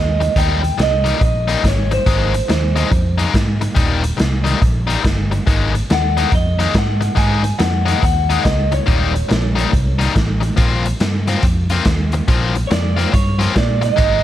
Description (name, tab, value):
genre	electric blues shuffle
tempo	141 BPM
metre	4/4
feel	swing 64% on 8ths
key	Eb mixolydian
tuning	A4 = 441 Hz
part	electric guitar through a small old amp	melody	0.0-3.2, 5.9-10.0, 12.7-14.2 s	C5 to Ab5	-21 LUFS	right 1 dB	phaser
part	fingered electric bass	bass	0.0-14.2 s	Eb1 to Bb2	-18 LUFS	equal	none
part	overdriven electric guitar	riff	0.2-14.2 s	Eb3 to F4	-21 LUFS	left 6 dB	none
part	raw garage drum kit	drums	0.2-14.1 s	hi-hat, kick drum, snare drum	-18 LUFS	equal	none
room	small room ambience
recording	none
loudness	-14 LUFS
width	side -12 dB against mid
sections	0.0-14.2 A section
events	none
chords	0.0 Eb; 2.1 Abadd9; 3.8 Eb; 5.5 Absus2; 8.9 Eb7; 10.6 Bbsus2